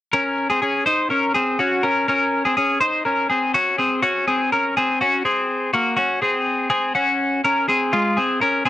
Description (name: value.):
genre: indie pop.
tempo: 123 BPM.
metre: 4/4.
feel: straight.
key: unclear.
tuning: A4 = 439 Hz.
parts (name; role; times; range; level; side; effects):
twelve-string electric guitar; solo; 0.1-8.7 s; Ab3 to C5; -17 LUFS; left 1 dB; none.
room: little or no reverb.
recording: dry, close 1970s-style studio recording.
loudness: -17 LUFS.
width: side -14 dB against mid.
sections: 0.1-4.0 A section; 4.0-8.7 B section.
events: none.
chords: 0.1 Gbsus2; 7.9 Db.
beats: | 0.13 0.62 1.10 1.59 | 2.08 2.56 3.05 3.54 | 4.03 4.51 5.00 5.48 | 5.97 6.46 6.94 7.43 | 7.92 8.40.